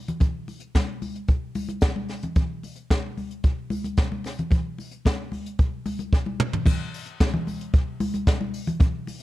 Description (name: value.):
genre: disco.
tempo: 112 BPM.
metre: 4/4.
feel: straight.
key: none.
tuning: none.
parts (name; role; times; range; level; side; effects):
jazz brush drum kit; drums; 0.1-9.2 s; crash cymbal, hi-hat, kick drum, snare drum, toms; -22 LUFS; equal; none.
congas; percussion; 0.1-9.2 s; none; -30 LUFS; left 1 dB; none.
room: little or no reverb.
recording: dark, warm production.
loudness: -23 LUFS.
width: side -16 dB against mid.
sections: 0.0-6.7 A section; 6.7-9.2 B section.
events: drum fill 6.1-6.7.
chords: none.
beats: | 0.21 0.75 1.29 1.82 | 2.36 2.90 3.44 3.98 | 4.51 5.05 5.59 6.13 | 6.66 7.20 7.73 8.27 | 8.80.